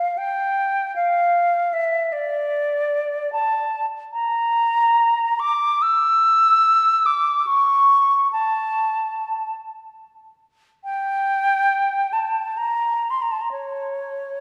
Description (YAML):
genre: classical, free, expressive piece for unaccompanied flute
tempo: 73 BPM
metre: 4/4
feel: uneven beats, rubato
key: D minor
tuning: A4 = 440 Hz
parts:
  - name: silver concert flute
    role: solo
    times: 0.0-14.4 s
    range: C#5 to E6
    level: -20 LUFS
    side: equal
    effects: none
room: wet concert hall reverb, RT60 2.1 s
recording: recorded in a church or concert hall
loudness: -20 LUFS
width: mono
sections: 0.0-14.4 A section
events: none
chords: none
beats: 0.18 | 0.94 1.73 2.53 3.33 | 4.13 4.97 5.81 6.63 | 7.47 8.31 9.15 9.98 | 10.83 11.69 12.56 13.51